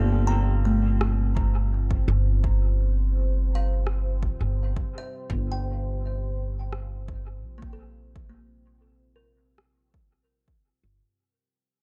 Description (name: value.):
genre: ambient dub.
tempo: 84 BPM.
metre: 4/4.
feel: straight.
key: G minor.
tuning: A4 = 435 Hz.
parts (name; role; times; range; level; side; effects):
deep dark ambient pad; sustained chords; 0.0-11.0 s; C4 to G5; -40 LUFS; equal; chorus, built-in reverb.
kalimba; arpeggios; 0.0-10.7 s; A3 to Bb5; -35 LUFS; equal; low-pass filter, dub echo.
upright bass; bass; 0.0-11.0 s; G1 to Bb1; -26 LUFS; equal; none.
electronic rim click; drums; 1.0-9.7 s; none; -36 LUFS; equal; studio reverb, dub echo.
electronic kick drum; drums; 1.4-10.6 s; none; -32 LUFS; equal; studio reverb.
room: digital ambience.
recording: echo-heavy mix.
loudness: -25 LUFS.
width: mono.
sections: 0.0-11.0 A section.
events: fade-out 0.0-11.0.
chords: 0.0 Gm11.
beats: 0.29 1.01 1.72 | 2.44 3.15 3.86 4.58 | 5.29 6.01 6.72 7.44 | 8.15 8.86 9.58 10.29.